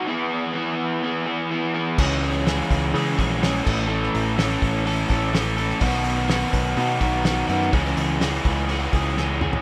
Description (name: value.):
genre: indie rock.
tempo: 125 BPM.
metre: 4/4.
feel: straight.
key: C# minor.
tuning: A4 = 440 Hz.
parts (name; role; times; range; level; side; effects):
crunchy overdriven guitar; riff; 0.0-9.6 s; D#3 to A4; -25 LUFS; equal; none.
picked electric bass; bass; 2.0-9.6 s; A1 to C#3; -28 LUFS; equal; none.
cloth-damped thuddy drum kit; drums; 2.0-9.6 s; crash cymbal, hi-hat, kick drum, snare drum, toms; -28 LUFS; equal; none.
room: light reverb.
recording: rough home demo mix.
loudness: -22 LUFS.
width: mono.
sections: 0.0-9.6 A section.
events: drum fill 9.2-9.6.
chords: 0.1 E; 2.0 C#m; 3.7 A; 5.8 B; 7.7 C#m.